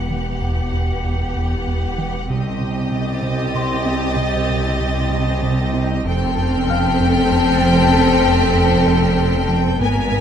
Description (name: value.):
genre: cinematic, suspense film score.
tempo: 96 BPM.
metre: 3/4.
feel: straight.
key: unclear.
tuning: A4 = 439 Hz.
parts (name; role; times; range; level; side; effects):
rich studio violin section; melody; 0.0-10.2 s; Eb5 to G#5; -24 LUFS; left 3 dB; none.
rich studio violin section; second line; 0.0-10.2 s; G4 to A#4; -24 LUFS; left 1 dB; none.
rich studio viola section; accompaniment; 0.0-10.2 s; B3 to C4; -22 LUFS; left 1 dB; none.
rich studio cello section; bass; 0.0-10.2 s; C2 to G#2; -25 LUFS; right 2 dB; none.
warm studio double bass section; bass; 0.0-10.2 s; E1 to C2; -25 LUFS; right 2 dB; none.
saturated sub bass; drone; 0.0-10.2 s; E1 to C2; -27 LUFS; equal; none.
small celesta; texture; 0.0-10.2 s; G4 to B6; -28 LUFS; left 6 dB; none.
rubbery square bass; riff; 0.1-10.2 s; E2 to C4; -23 LUFS; right 1 dB; none.
rich studio violin section; texture; 2.3-10.2 s; Eb6 to B6; -30 LUFS; left 2 dB; none.
room: wet recital hall reverb, RT60 1.3 s.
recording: minimal, uncompressed stereo recording.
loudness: -15 LUFS.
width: side -8 dB against mid.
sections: 0.0-10.2 A section.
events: none.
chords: 0.0 Emadd9; 2.3 Cm; 6.1 Fadd9.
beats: | 0.43 1.06 1.68 | 2.31 2.93 3.56 | 4.18 4.81 5.43 | 6.06 6.68 7.31 | 7.93 8.56 9.18 | 9.81.